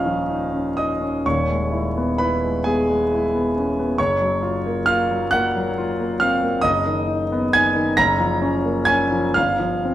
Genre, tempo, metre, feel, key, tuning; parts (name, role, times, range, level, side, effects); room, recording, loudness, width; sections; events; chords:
classical, impressionist solo piano; 44 BPM (dotted quarters); 6/8; uneven beats, rubato; A4 = 442 Hz
clear concert grand piano; solo; 0.0-9.9 s; Eb1 to Bb6; -18 LUFS; equal
wet recital hall reverb, RT60 1.5 s; -18 LUFS; side -12 dB against mid
0.0-9.9 A section
0.0 Ebsus2; 1.2 Emaj7/D#; 4.0 Gbmaj7; 6.6 Abm7/Gb; 8.0 Bbm7/Gb; 9.4 G7(no3)